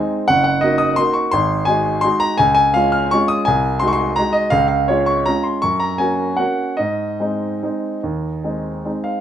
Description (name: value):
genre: classical, piano waltz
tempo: 143-179 BPM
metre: 3/4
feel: rubato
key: unclear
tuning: A4 = 442 Hz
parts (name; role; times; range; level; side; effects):
- warm grand piano; solo; 0.0-9.2 s; Gb1 to F6; -15 LUFS; equal; none
room: light reverb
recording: minimal, uncompressed stereo recording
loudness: -15 LUFS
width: side -10 dB against mid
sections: 0.0-9.2 A section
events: none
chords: 0.3 Ebm/Gb; 1.3 Ab7; 2.4 Db; 3.5 Ab7/C; 4.5 Db; 5.6 Gb; 6.8 Ab